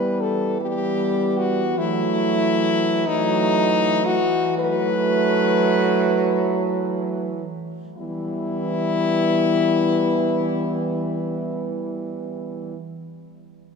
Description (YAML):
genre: classical, lyrical piece for horn quartet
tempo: 31-53 BPM (dotted quarters)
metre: 12/8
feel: rubato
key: E minor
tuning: A4 = 440 Hz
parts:
  - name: clear French horn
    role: melody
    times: 0.0-12.7 s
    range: D#4 to B4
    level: -23 LUFS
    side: left 6 dB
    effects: none
  - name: mellow French horn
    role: second line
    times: 0.0-12.8 s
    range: A3 to B3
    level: -26 LUFS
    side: right 8 dB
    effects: none
  - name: mellow French horn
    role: accompaniment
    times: 0.0-12.8 s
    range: F#3 to G3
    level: -26 LUFS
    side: right 1 dB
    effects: none
  - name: mellow French horn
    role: bass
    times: 0.0-12.8 s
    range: E3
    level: -27 LUFS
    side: right 2 dB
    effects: none
room: wet church reverb, RT60 3.2 s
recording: minimal, uncompressed stereo recording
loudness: -19 LUFS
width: side -5 dB against mid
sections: 0.0-8.0 A section; 8.0-13.8 B section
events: slowing down 0.0-8.0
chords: 0.0 Em; 1.8 B7(no3)/E; 8.0 Em